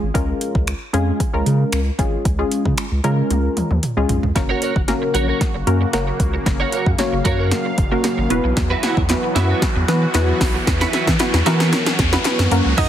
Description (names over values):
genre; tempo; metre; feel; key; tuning
dance-pop; 114 BPM; 4/4; straight; F# major; A4 = 440 Hz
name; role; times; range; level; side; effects
funky polysynth comp; accompaniment; 0.0-12.7 s; G#3 to C#5; -22 LUFS; left 1 dB; chorus, sidechain pumping
round analog bass; bass; 0.0-12.9 s; E1 to E3; -20 LUFS; equal; sidechain pumping
deep house drum kit; drums; 0.1-12.9 s; crash cymbal, finger snaps, hi-hat, kick drum, snare drum, toms; -21 LUFS; equal; overdrive
sweeping resonant pad; sustained chords; 4.4-12.9 s; C#3 to E#5; -27 LUFS; equal; chorus, sidechain pumping
twelve-string electric guitar; riff; 4.4-12.9 s; C#4 to C#5; -24 LUFS; right 5 dB; ensemble chorus
riser and downlifter; sound effects; 7.0-12.9 s; none; -27 LUFS; left 1 dB; none
group handclap; percussion; 9.1-12.4 s; none; -30 LUFS; left 7 dB; none
analog pluck; melody; 12.8-12.9 s; D#4 to D#5; -19 LUFS; right 4 dB; chorus, sidechain pumping
room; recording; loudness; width
light reverb; heavily compressed radio sound; -16 LUFS; side -10 dB against mid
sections
0.0-4.4 A section; 4.4-12.8 B section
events
drum fill 3.3-4.4, 4.4-12.8; build-up 4.4-12.8; riser 7.0-12.8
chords
0.0 C#; 4.4 F#; 8.3 Esus2; 12.5 F#